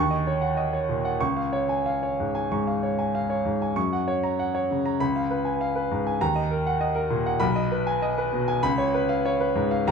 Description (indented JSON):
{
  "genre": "classical, virtuoso piano study",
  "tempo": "97 BPM",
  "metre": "4/4",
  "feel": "rubato",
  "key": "unclear",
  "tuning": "A4 = 440 Hz",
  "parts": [
    { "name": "bright grand piano", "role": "solo", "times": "0.0-9.9 s", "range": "B1 to C#6", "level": "-22 LUFS", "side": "equal", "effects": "none" }
  ],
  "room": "moderate large studio reverb, RT60 1.3 s",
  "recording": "minimal, uncompressed stereo recording",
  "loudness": "-22 LUFS",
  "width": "side -6 dB against mid",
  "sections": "0.0-9.9 A section",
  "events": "none",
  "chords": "0.0 D#m7; 1.2 C#; 3.8 F#; 5.0 C#7; 6.2 D#m; 7.4 G#m/B; 8.6 C#7",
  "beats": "0.56 | 1.19 1.84 2.49 3.13 | 3.76 4.38 5.00 5.60 | 6.21 6.81 7.41 8.02 | 8.63 9.25 9.87"
}